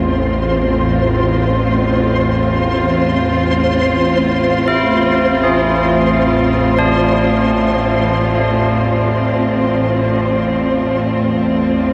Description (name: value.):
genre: dark ambient drone.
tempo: free time.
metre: none.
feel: none.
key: unclear.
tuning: A4 = 440 Hz.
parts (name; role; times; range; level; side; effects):
muted studio cello section; sustained chords; 0.0-11.9 s; A2 to F4; -18 LUFS; equal; none.
bowed-like drone; drone; 0.0-11.9 s; A1 to E2; -20 LUFS; equal; built-in reverb.
flickering grainy texture; texture; 0.0-11.9 s; C5; -23 LUFS; equal; built-in reverb, shimmer reverb.
tubular bells; arpeggios; 4.7-11.9 s; D4 to G#4; -22 LUFS; equal; diffuse ambient delay, shimmer reverb.
room: wet huge ambient reverb, RT60 8.7 s.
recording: cassette tape.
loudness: -15 LUFS.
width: mono.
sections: 0.0-11.9 A section.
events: none.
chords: 0.0 F/A.